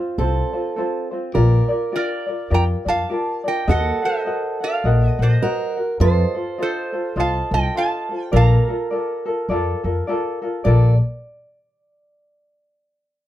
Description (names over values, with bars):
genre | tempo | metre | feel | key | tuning
Hawaiian | 103 BPM | 4/4 | swing 60% on 8ths | Bb major | A4 = 440 Hz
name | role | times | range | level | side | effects
metal-body resonator slide guitar | melody | 0.0-10.0 s | A4 to Bb5 | -24 LUFS | right 2 dB | none
fingerpicked steel-string acoustic guitar | second line | 0.0-11.0 s | F4 to D5 | -27 LUFS | right 5 dB | none
tenor ukulele | accompaniment | 0.0-10.9 s | C4 to Gb5 | -24 LUFS | left 2 dB | none
upright bass | bass | 0.2-11.0 s | Bb1 to F2 | -17 LUFS | equal | none
room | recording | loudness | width
light reverb | dark, warm production | -17 LUFS | side -13 dB against mid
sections
0.0-1.3 A section; 1.3-10.6 B section; 10.6-13.0 C section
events
none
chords
0.0 F; 1.3 Bb6; 3.7 Ebm; 6.0 F7; 8.3 Bbmaj7